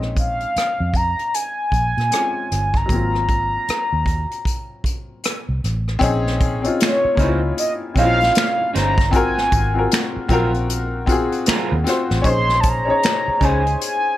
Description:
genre	R&B, neo-soul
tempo	77 BPM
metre	4/4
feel	swing 62% on 16ths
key	Bb minor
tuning	A4 = 440 Hz
part	clear upright piano	accompaniment	0.0-14.2 s	Gb3 to Db5	-22 LUFS	left 3 dB	plate reverb
part	vintage muted fingered electric bass	bass	0.0-13.7 s	G1 to Bb2	-22 LUFS	equal	none
part	unplugged drum kit	drums	0.0-14.0 s	finger snaps, hi-hat, kick drum, rim click, snare drum	-22 LUFS	equal	none
part	mellow horn-like synth lead	melody	0.2-14.2 s	Db5 to Db6	-20 LUFS	equal	chorus, plate reverb
part	electric guitar through a small old amp	second line	7.2-13.6 s	Gb3 to C5	-26 LUFS	right 5 dB	plate reverb
room	light reverb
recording	none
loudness	-16 LUFS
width	side -14 dB against mid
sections	0.0-6.0 A section; 6.0-14.2 B section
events	none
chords	0.0 Bbm11; 2.9 Ab13; 6.0 Bbm11; 9.1 Ab13; 12.2 Bbm11

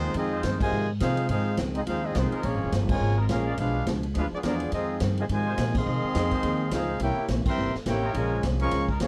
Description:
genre	jazz, big band swing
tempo	210 BPM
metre	4/4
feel	swing 59% on 8ths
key	F minor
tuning	A4 = 437 Hz
part	clear trumpet section	melody	0.0-9.1 s	Ab3 to Db6	-33 LUFS	equal	none
part	clear trombone section	second line	0.0-9.1 s	C3 to G4	-34 LUFS	equal	none
part	archtop guitar, miked and amplified	accompaniment	0.0-9.1 s	F2 to D4	-37 LUFS	equal	none
part	upright bass	bass	0.0-9.1 s	F1 to C3	-30 LUFS	equal	none
part	swinging big-band drum kit	drums	0.1-9.1 s	crash cymbal, hi-hat, kick drum, ride cymbal, snare drum	-35 LUFS	equal	none
part	muted trombone section	sustained chords	0.3-9.0 s	Ab3 to D5	-40 LUFS	equal	none
room	light reverb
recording	none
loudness	-26 LUFS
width	mono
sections	0.0-9.1 A section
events	band accent 0.6, 2.9, 5.7, 7.4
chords	0.0 Fm7; 2.4 Bbm7; 3.6 Bdim7; 4.7 Fm7; 7.0 C7b9; 8.1 Bbm7

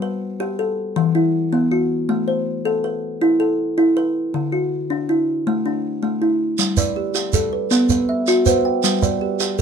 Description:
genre	southern african traditional, mbira-style interlocking cycle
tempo	107 BPM (dotted quarters)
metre	12/8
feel	straight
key	G major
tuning	A4 = 439 Hz
part	kalimba	arpeggios	0.0-9.6 s	D3 to C5	-18 LUFS	left 1 dB	none
part	shekere	percussion	6.6-9.6 s	none	-21 LUFS	right 6 dB	none
part	kalimba	arpeggios	6.8-9.6 s	G3 to G5	-22 LUFS	right 7 dB	none
room	moderate studio reverb, RT60 0.5 s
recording	minimal, uncompressed stereo recording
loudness	-17 LUFS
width	side -7 dB against mid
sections	0.0-6.6 A section; 6.6-9.6 A section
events	none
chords	0.0 G; 1.0 E5; 2.1 Am; 4.3 D; 6.6 G; 7.7 B5; 8.8 G

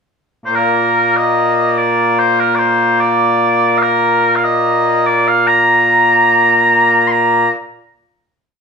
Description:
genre	scottish traditional, Scottish pipe music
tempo	73 BPM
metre	2/4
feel	straight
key	Bb major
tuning	A4 = 442 Hz
part	mellow small bagpipes	solo	0.5-7.5 s	Bb2 to C6	-10 LUFS	equal	none
room	moderate studio reverb, RT60 0.8 s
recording	band playing live in one room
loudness	-10 LUFS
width	side -5 dB against mid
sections	0.0-0.5 pickup bar; 0.5-7.1 A section; 7.1-8.6 final note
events	none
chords	none

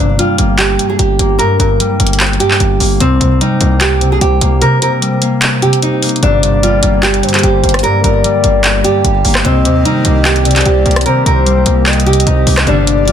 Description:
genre	hip hop, trap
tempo	149 BPM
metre	4/4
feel	half-time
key	G minor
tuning	A4 = 440 Hz
part	nylon-string guitar	melody	0.0-13.1 s	C4 to Bb4	-15 LUFS	right 2 dB	digital delay
part	concert harp	accompaniment	0.0-13.1 s	G2 to Bb3	-15 LUFS	left 1 dB	none
part	distorted 808-style bass	bass	0.0-13.1 s	G1 to Eb2	-14 LUFS	equal	distortion
part	trap drum kit	drums	0.2-13.1 s	handclaps, hi-hat, rim click	-15 LUFS	equal	vintage 12-bit sampler grit
part	gliding portamento lead	second line	6.2-13.1 s	C5 to Eb5	-17 LUFS	left 4 dB	chorus, digital delay
part	hollow soft pad	sustained chords	6.2-13.1 s	D3 to G4	-22 LUFS	equal	chorus
part	warm studio string section	stabs	12.7-13.0 s	Bb2 to G3	-19 LUFS	right 4 dB	none
room	light reverb, small room ambience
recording	dense, heavily limited modern master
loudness	-9 LUFS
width	side -9 dB against mid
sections	0.0-6.2 A section; 6.2-13.1 B section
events	kick muted 4.6-6.2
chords	0.0 Gm; 3.0 Cm7; 6.2 Gm; 9.4 Cm7

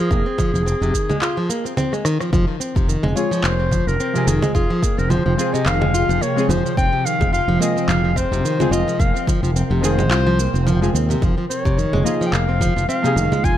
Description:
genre	organic downtempo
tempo	108 BPM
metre	4/4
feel	swing 56% on 16ths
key	F minor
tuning	A4 = 440 Hz
part	warm clarinet	melody	0.0-13.6 s	Ab4 to Ab5	-23 LUFS	left 1 dB	ping-pong delay
part	nylon-string guitar	arpeggios	0.0-13.6 s	C3 to F4	-22 LUFS	equal	vintage 12-bit sampler grit, ping-pong delay
part	electronic shaker, congas, handclaps and rim click	drums	0.0-13.6 s	none	-25 LUFS	right 3 dB	none
part	fretless electric bass	bass	0.1-13.6 s	F1 to Eb2	-20 LUFS	equal	sidechain pumping
part	electronic kick drum	drums	0.1-13.6 s	none	-21 LUFS	equal	none
part	ethereal airy pad	sustained chords	4.0-13.6 s	C3 to G5	-28 LUFS	right 1 dB	ensemble chorus, built-in reverb, sidechain pumping
part	deep mellow chord stab	accompaniment	3.1-13.6 s	F3 to Ab4	-25 LUFS	left 2 dB	chorus, sidechain pumping, ping-pong delay
room	light reverb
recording	none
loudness	-16 LUFS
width	side -11 dB against mid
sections	0.0-2.3 A section; 2.3-13.6 B section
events	drum fill 1.9-2.3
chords	0.0 Fm

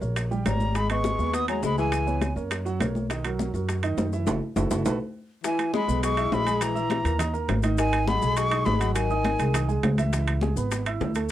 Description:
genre	Afro-Cuban jazz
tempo	205 BPM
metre	4/4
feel	straight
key	B major, E major from 5.4 s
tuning	A4 = 443 Hz
part	warm grand piano	accompaniment	0.0-11.3 s	D#3 to E6	-30 LUFS	right 6 dB	none
part	upright bass	bass	0.0-11.3 s	F#1 to F#2	-27 LUFS	equal	none
part	bongos	percussion	0.0-11.3 s	none	-35 LUFS	left 7 dB	none
part	congas	percussion	0.0-11.2 s	none	-32 LUFS	left 2 dB	none
part	maracas	percussion	0.0-11.3 s	none	-42 LUFS	left 15 dB	none
part	timbales	percussion	0.2-11.3 s	none	-32 LUFS	right 5 dB	none
part	breathy concert flute	melody	0.5-2.3, 5.5-9.8 s	G#5 to D#6	-28 LUFS	equal	slapback echo
part	breathy tenor saxophone	second line	0.5-2.3, 5.4-9.8 s	D#3 to B3	-30 LUFS	left 10 dB	none
room	little or no reverb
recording	dry, close 1970s-style studio recording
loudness	-23 LUFS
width	side -12 dB against mid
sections	0.0-5.4 A section; 5.4-11.3 B section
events	band accent 4.3-5.4; drum fill 4.6-5.4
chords	0.0 D#7 (rootless); 0.8 G#m; 1.9 C#m7; 2.5 F#; 3.1 Bmaj7; 4.3 F#m7; 4.9 B5; 5.4 E6; 6.6 Emaj7#11/A#; 7.2 D#5; 7.8 G#m7; 9.0 G#7; 10.1 C#m7

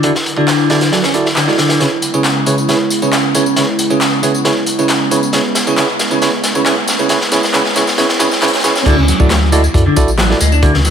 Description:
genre	breakbeat, breaks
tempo	136 BPM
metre	4/4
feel	straight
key	C# phrygian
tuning	A4 = 441 Hz
part	warbly tape-like pad	sustained chords	0.0-10.9 s	C#3 to E4	-20 LUFS	right 2 dB	chorus, built-in reverb, sidechain pumping
part	semi-hollow electric guitar	riff	0.0-10.9 s	C#3 to D4	-17 LUFS	equal	wide subtle chorus, low-pass filter, digital delay
part	bell-like tine electric piano	stabs	0.0-10.7 s	E4 to D5	-17 LUFS	right 4 dB	digital delay
part	crunchy breakbeat drum kit	drums	0.0-10.9 s	crash cymbal, hi-hat, kick drum, snare drum	-16 LUFS	left 1 dB	high-pass filter on kick, high-pass filter on hats, high-pass filter on cymbals, high-pass filter on snare, high-pass filter on room
part	electronic handclaps and tambourine	drums	0.5-10.9 s	none	-20 LUFS	left 1 dB	overdrive, high-pass filter on snare, high-pass filter on perc, high-pass filter on room
part	riser	sound effects	4.7-8.9 s	none	-25 LUFS	right 1 dB	none
part	saturated sub bass	bass	8.9-10.9 s	A1 to F#2	-13 LUFS	left 1 dB	none
room	light reverb, small room ambience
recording	high-pass filter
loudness	-11 LUFS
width	side -8 dB against mid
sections	0.0-8.9 A section; 8.9-10.9 B section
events	build-up 0.0-8.9; drum fill 1.8-8.9; drop 8.9-10.9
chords	0.0 Dadd9; 1.8 C#m7; 8.9 Dadd9

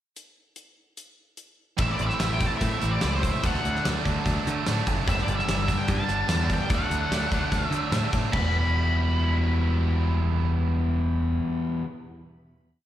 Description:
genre	classic rock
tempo	147 BPM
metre	4/4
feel	straight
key	E minor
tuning	A4 = 440 Hz
part	gated 80s drum kit	drums	0.2-8.4 s	hi-hat, kick drum, snare drum, splash cymbal, tambourine, toms	-28 LUFS	equal	none
part	octave-fuzz lead guitar	melody	1.8-11.4 s	C5 to B5	-31 LUFS	left 1 dB	distortion, slapback echo, digital delay
part	distorted electric guitar	riff	1.8-11.9 s	G2 to E4	-31 LUFS	right 9 dB	overdrive, slapback echo
part	overdriven electric guitar	riff	1.8-11.9 s	E2 to D4	-31 LUFS	left 7 dB	slapback echo
part	growling picked electric bass	bass	1.8-11.4 s	E1 to D3	-26 LUFS	equal	overdrive
room	little or no reverb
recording	live gig heard through the venue's PA, recital hall reverb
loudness	-23 LUFS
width	side -12 dB against mid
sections	0.2-1.8 pickup bar; 1.8-8.3 pre-chorus; 8.3-11.5 final chord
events	none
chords	0.2 N.C.; 1.8 Am; 3.4 D; 5.1 G; 6.7 D; 8.3 Em

